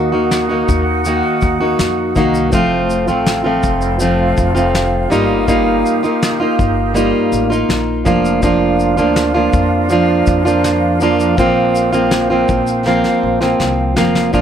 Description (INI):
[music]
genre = acoustic pop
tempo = 81 BPM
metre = 4/4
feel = straight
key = Bb major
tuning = A4 = 440 Hz
[part]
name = fingerpicked plugged-in steel-string acoustic guitar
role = accompaniment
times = 0.0-14.4 s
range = Bb2 to Gb4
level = -13 LUFS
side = right 1 dB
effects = none
[part]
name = breathy small flute group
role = sustained chords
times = 0.0-14.3 s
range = C4 to Gb5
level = -22 LUFS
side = right 2 dB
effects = none
[part]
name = upright bass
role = bass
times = 0.0-14.4 s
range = F1 to F2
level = -21 LUFS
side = equal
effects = none
[part]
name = soft brush drum kit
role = drums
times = 0.3-14.4 s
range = kick drum, shaker, snare drum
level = -20 LUFS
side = left 2 dB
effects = none
[sound]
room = light reverb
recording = none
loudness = -12 LUFS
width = side -8 dB against mid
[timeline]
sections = 0.0-14.3 A section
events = drum fill 12.9-14.3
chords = 0.0 Ebm; 2.5 F; 5.1 Ebadd9/G; 8.1 Bb/F; 11.4 Bbadd9